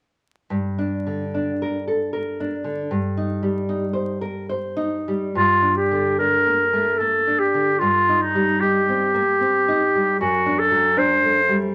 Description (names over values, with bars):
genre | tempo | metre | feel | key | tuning
romantic duo for clarinet and classical guitar | 74 BPM | 3/4 | uneven beats, rubato | G minor | A4 = 440 Hz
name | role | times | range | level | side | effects
nylon-string guitar | accompaniment | 0.5-11.7 s | F#2 to C5 | -26 LUFS | equal | none
bright clarinet | melody | 5.4-11.6 s | Eb4 to C5 | -20 LUFS | equal | none
room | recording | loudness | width
moderate club reverb, RT60 0.8 s | vinyl crackle | -21 LUFS | mono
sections
0.5-5.4 A section; 5.4-11.7 B section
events
none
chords
0.5 Gm; 2.9 Cm/G; 5.4 Gm; 7.8 Cm/G; 10.2 D7/F#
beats
| 0.50 1.34 2.13 | 2.90 3.68 4.49 | 5.36 6.19 7.00 | 7.80 8.60 9.39 | 10.20 10.99